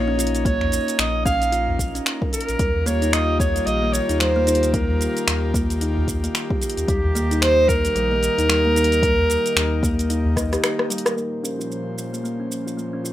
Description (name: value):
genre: organic downtempo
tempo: 112 BPM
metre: 4/4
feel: swing 59% on 16ths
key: unclear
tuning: A4 = 441 Hz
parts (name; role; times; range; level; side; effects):
- bright clarinet; melody; 0.0-10.6 s; G4 to F5; -21 LUFS; right 1 dB; digital delay, plate reverb
- airy breathy pad; sustained chords; 0.0-13.1 s; Bb2 to C5; -29 LUFS; left 2 dB; chorus, sidechain pumping, plate reverb
- buzzing kalimba; arpeggios; 0.0-13.1 s; G3 to Eb5; -26 LUFS; equal; low-pass filter, digital delay, plate reverb
- warm sub bass; bass; 0.0-10.6 s; Bb1 to Eb2; -24 LUFS; equal; none
- deep house drum kit; drums; 0.2-13.1 s; finger snaps, hi-hat, rim click, shaker; -24 LUFS; equal; overdrive
- electronic kick drum; drums; 0.5-10.5 s; none; -24 LUFS; equal; overdrive
- udu; percussion; 0.6-10.3 s; none; -27 LUFS; right 1 dB; none
room: wet studio reverb, RT60 0.6 s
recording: rough home demo mix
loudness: -18 LUFS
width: side -13 dB against mid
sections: 0.0-11.2 A section; 11.2-13.1 B section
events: drum fill 10.4-11.2; filter sweep on kalimba 11.2-13.1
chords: 0.0 Bbm; 2.6 Eb; 11.2 Bbm